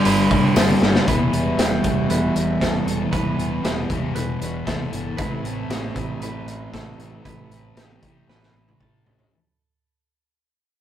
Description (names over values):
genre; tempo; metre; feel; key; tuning
rock, shoegaze and dream pop; 116 BPM; 4/4; straight; unclear; A4 = 440 Hz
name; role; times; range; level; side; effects
direct-recorded clean electric guitar; arpeggios; 0.0-9.3 s; G4 to B4; -31 LUFS; right 4 dB; digital delay
cranked stack guitar; riff; 0.0-1.1 s; G2 to G3; -18 LUFS; right 1 dB; overdrive
crunchy overdriven guitar; riff; 0.0-9.3 s; G2 to E4; -27 LUFS; right 4 dB; none
thick fuzz guitar; riff; 0.0-9.3 s; E2 to A3; -26 LUFS; left 6 dB; distortion
fingered electric bass; bass; 0.1-9.3 s; E1 to A1; -30 LUFS; equal; none
raw garage drum kit; drums; 0.1-9.3 s; hi-hat, kick drum, snare drum, toms; -24 LUFS; equal; none
tambourine; percussion; 0.6-0.7 s; none; -35 LUFS; left 8 dB; none
room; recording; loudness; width
wet studio reverb, RT60 0.5 s; rough rehearsal-room recording, tube saturation; -18 LUFS; side -10 dB against mid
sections
0.0-1.1 A section; 1.1-9.3 B section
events
drum fill 0.8, 8.3-9.3; fade-out 1.1-9.3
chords
0.0 G; 1.1 Em; 5.2 Am9